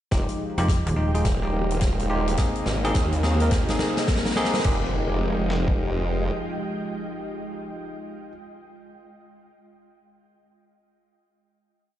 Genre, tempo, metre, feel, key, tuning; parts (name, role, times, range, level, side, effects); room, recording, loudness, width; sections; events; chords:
glitch hop; 106 BPM; 4/4; swing 63% on 16ths; F minor; A4 = 440 Hz
warm analog pad; sustained chords; 0.1-7.7 s; C3 to G4; -32 LUFS; equal; chorus, sidechain pumping
bell-like tine electric piano; stabs; 0.1-8.3 s; Ab3 to Bb4; -29 LUFS; equal; sidechain pumping, ping-pong delay
formant-sweep wobble bass; bass; 0.1-6.3 s; Eb1 to Eb2; -25 LUFS; equal; chorus, tube saturation
big rock drum kit; drums; 0.1-4.8 s; crash cymbal, hi-hat, snare drum; -30 LUFS; left 1 dB
boom bap sampler-style drum kit; drums; 0.1-5.8 s; kick drum, snare drum; -24 LUFS; equal; overdrive
riser and impact; sound effects; 2.5-8.4 s; -37 LUFS; right 1 dB
ethereal airy pad; texture; 0.5-7.7 s; Ab3 to Ab5; -35 LUFS; right 1 dB; ensemble chorus, built-in reverb, sidechain pumping
slap-like FM bass; bass; 0.6-1.2 s; Eb1 to F1; -22 LUFS; equal
light reverb, studio ambience; played on a big sound system in a bare room, large studio reverb, nothing above 10.3 kHz; -22 LUFS; side -12 dB against mid
0.1-4.7 build; 4.7-6.9 final chord
build-up 0.1-4.7; drum fill 0.1-4.7
0.1 Fm9; 2.4 Bb9sus4; 4.7 Fm9